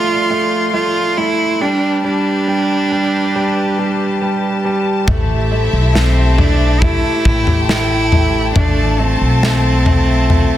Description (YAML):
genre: pop ballad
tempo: 69 BPM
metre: 4/4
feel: straight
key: A minor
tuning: A4 = 439 Hz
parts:
  - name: warm cello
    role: melody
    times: 0.0-10.6 s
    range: C4 to F4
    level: -17 LUFS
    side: right 2 dB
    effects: none
  - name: bright grand piano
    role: accompaniment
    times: 0.0-10.6 s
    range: G3 to A3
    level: -20 LUFS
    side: right 2 dB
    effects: none
  - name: warm studio string section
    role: sustained chords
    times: 0.0-10.6 s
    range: F3 to C6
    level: -23 LUFS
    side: left 5 dB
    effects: none
  - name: warm symphonic violin section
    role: second line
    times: 5.1-10.6 s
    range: E4 to A5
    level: -23 LUFS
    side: left 1 dB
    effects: none
  - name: upright bass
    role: bass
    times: 5.1-10.5 s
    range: A1 to B1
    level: -16 LUFS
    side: equal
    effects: none
  - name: modern studio drum kit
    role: drums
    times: 5.1-10.5 s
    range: kick drum, snare drum, toms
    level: -16 LUFS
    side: left 1 dB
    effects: none
room: light reverb, studio reverb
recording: dense, heavily limited modern master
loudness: -12 LUFS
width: side -12 dB against mid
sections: 0.0-10.6 A section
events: none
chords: 0.0 Dm7; 1.6 Gadd9; 5.1 Am7; 8.6 Fmaj7/A